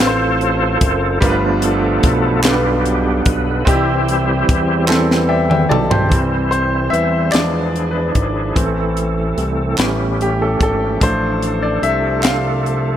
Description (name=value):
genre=slow gospel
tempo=49 BPM (dotted quarters)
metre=6/8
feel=straight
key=C major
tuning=A4 = 442 Hz
part: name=clear grand piano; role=accompaniment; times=0.0-13.0 s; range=G2 to A5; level=-18 LUFS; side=left 1 dB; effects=none
part: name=bright tonewheel organ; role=sustained chords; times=0.0-13.0 s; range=E3 to C5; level=-20 LUFS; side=right 2 dB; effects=fast rotary speaker, overdrive, chorus vibrato
part: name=fat analog bass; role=bass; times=0.0-13.0 s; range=F#1 to E2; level=-20 LUFS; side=equal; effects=none
part: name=crisp fusion drum kit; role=drums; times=0.0-12.8 s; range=hi-hat, kick drum, snare drum, toms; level=-18 LUFS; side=equal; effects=none
part: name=group handclap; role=percussion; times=2.4-12.6 s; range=none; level=-23 LUFS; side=right 4 dB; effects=none
room=small room ambience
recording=none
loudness=-14 LUFS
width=side -10 dB against mid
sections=0.0-6.1 A section; 6.1-13.0 B section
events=tonewheel organ solo 0.0-6.1; drum fill 4.9-6.1; grand piano fill 4.9-6.1; grand piano solo 6.1-13.0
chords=0.0 F; 1.2 G7; 3.7 C; 7.3 E7b9; 8.6 Am; 9.8 A7; 11.0 Dm/A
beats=0.00 | 1.22 2.45 | 3.67 4.89 | 6.12 7.34 | 8.56 9.79 | 11.01 12.24